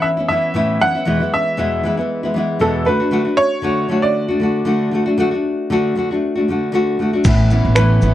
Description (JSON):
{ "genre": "acoustic pop", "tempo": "116 BPM", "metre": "4/4", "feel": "swing 55% on 16ths", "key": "A major", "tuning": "A4 = 440 Hz", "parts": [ { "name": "bright upright piano", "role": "melody", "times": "0.0-8.1 s", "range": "A4 to F#5", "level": "-19 LUFS", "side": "right 2 dB", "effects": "none" }, { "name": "nylon-string guitar", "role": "accompaniment", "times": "0.0-8.1 s", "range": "E2 to F#4", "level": "-17 LUFS", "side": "left 1 dB", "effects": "none" }, { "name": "upright bass", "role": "bass", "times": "7.2-8.1 s", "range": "A1", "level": "-14 LUFS", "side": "equal", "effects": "none" }, { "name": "dusty soul sampler-style drum kit", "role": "drums", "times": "7.2-8.1 s", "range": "crash cymbal, finger snaps, kick drum, shaker", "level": "-18 LUFS", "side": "equal", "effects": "none" }, { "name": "picked steel-string acoustic guitar", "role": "arpeggios", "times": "7.3-8.1 s", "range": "E3 to C#4", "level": "-23 LUFS", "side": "right 6 dB", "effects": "slapback echo" } ], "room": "little or no reverb", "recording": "dry, close 1970s-style studio recording", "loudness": "-14 LUFS", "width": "side -13 dB against mid", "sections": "0.0-7.2 A section", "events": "none", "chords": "0.0 Aadd9; 1.1 E; 2.9 D; 7.2 Aadd9", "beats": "0.04 0.55 | 1.07 1.58 2.10 2.62 | 3.13 3.65 4.16 4.68 | 5.19 5.71 6.22 6.74 | 7.25 7.76" }